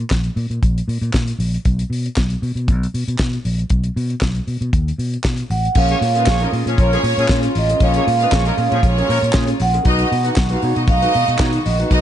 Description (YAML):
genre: disco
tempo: 117 BPM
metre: 4/4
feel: straight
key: unclear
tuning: A4 = 440 Hz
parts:
  - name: fingered electric bass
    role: bass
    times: 0.0-12.0 s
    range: A1 to B2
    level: -19 LUFS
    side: equal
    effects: none
  - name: damped 70s drum kit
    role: drums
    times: 0.1-12.0 s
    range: crash cymbal, handclaps, hi-hat, kick drum, snare drum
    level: -20 LUFS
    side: equal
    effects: none
  - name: vibraphone with soft mallets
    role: melody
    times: 5.5-12.0 s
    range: C#5 to F#5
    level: -20 LUFS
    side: right 3 dB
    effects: none
  - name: rich studio violin section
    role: second line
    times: 5.8-12.0 s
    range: C#4 to F#5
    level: -24 LUFS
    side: right 1 dB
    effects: slapback echo
  - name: mellow electric guitar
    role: accompaniment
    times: 5.8-12.0 s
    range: C#4 to C#5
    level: -25 LUFS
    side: right 1 dB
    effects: harmonic tremolo
  - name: rich chamber string section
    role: sustained chords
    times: 5.8-12.0 s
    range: C#3 to F#4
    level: -28 LUFS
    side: left 3 dB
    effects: none
  - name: warm horn section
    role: stabs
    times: 5.9-9.2 s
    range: E#3 to D#5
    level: -25 LUFS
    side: left 1 dB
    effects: slapback echo
room: little or no reverb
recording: nothing above 10.3 kHz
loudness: -15 LUFS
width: side -11 dB against mid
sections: 0.0-5.8 A section; 5.8-12.0 B section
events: none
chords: 0.0 N.C.; 5.8 A#m7; 9.9 G#m7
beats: 0.11 0.63 1.14 | 1.65 2.17 2.68 3.20 | 3.71 4.22 4.74 5.25 | 5.76 6.28 6.79 7.30 | 7.81 8.32 8.84 9.35 | 9.86 10.37 10.88 11.39 | 11.91